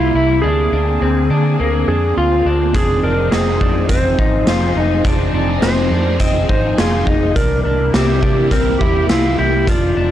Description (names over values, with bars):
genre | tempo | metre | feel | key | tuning
dream pop | 104 BPM | 4/4 | straight | F dorian | A4 = 440 Hz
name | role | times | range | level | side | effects
clean lap steel guitar | melody | 0.0-10.1 s | E4 to Eb5 | -19 LUFS | right 2 dB | tape echo
phased string machine | sustained chords | 0.0-10.1 s | C3 to Ab4 | -21 LUFS | equal | ensemble chorus, phaser
electric guitar through a small old amp | arpeggios | 0.0-10.1 s | Bb3 to F4 | -21 LUFS | left 4 dB | lush chorus, tape echo
vintage muted fingered electric bass | bass | 0.0-10.1 s | F1 to D3 | -19 LUFS | equal | none
raw garage drum kit | drums | 2.7-9.8 s | hi-hat, kick drum, snare drum | -18 LUFS | equal | none
room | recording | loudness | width
studio reverb | transformer saturation, cassette tape | -13 LUFS | side -11 dB against mid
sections
0.0-10.1 A section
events
none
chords
0.4 Bb7/D; 2.7 Fm7; 7.4 C7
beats
| 0.44 1.01 1.59 2.17 | 2.74 3.32 3.90 4.47 | 5.05 5.63 6.21 6.78 | 7.36 7.94 8.51 9.09 | 9.67